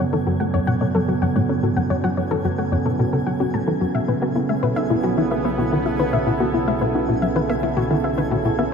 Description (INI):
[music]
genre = ambient, sequencer-driven space music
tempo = 110 BPM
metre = 4/4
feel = straight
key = unclear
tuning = A4 = 440 Hz
[part]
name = sweeping resonant pad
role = sustained chords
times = 0.0-8.7 s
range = C#3 to A4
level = -23 LUFS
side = right 3 dB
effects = chorus
[part]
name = soft round pluck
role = arpeggios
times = 0.0-8.6 s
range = E4 to A5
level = -24 LUFS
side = left 4 dB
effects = chorus, auto-pan, ping-pong delay
[part]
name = plucky analog bass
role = riff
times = 0.0-8.6 s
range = F#2 to F#4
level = -22 LUFS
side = left 1 dB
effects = wide subtle chorus, ping-pong delay
[part]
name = analog drone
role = bass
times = 0.0-8.7 s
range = B1 to F#2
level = -31 LUFS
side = left 1 dB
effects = chorus
[part]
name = twinkling granular texture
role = texture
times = 0.0-8.7 s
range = G#5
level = -37 LUFS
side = equal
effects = built-in reverb
[sound]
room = wet cathedral reverb, RT60 5.1 s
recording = in a vast, echoing space, faint mains hum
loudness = -18 LUFS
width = side -6 dB against mid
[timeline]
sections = 0.0-8.7 A section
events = fade-in on synth texture 0.0-8.7; filter sweep on analog synth bass 0.0-8.7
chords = 0.0 F#m; 3.9 Bsus4